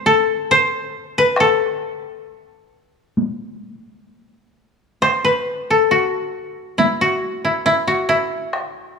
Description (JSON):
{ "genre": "japanese traditional, Japanese chamber music", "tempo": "63-70 BPM", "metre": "4/4", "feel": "rubato", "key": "A kumoi", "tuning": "A4 = 441 Hz", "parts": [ { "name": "koto", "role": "melody", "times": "0.0-9.0 s", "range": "E4 to C5", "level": "-16 LUFS", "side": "left 1 dB", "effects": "none" }, { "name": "taiko ensemble", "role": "percussion", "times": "1.4-8.7 s", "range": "none", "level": "-24 LUFS", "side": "equal", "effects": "none" } ], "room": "moderate recital hall reverb, RT60 1.9 s", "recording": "studio ambience", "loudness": "-16 LUFS", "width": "side -5 dB against mid", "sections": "0.0-5.0 A section; 5.0-9.0 B section", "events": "none", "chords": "none", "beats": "0.48 | 1.37 2.27 3.17 4.09 | 5.01 5.90 6.79 7.67 | 8.53" }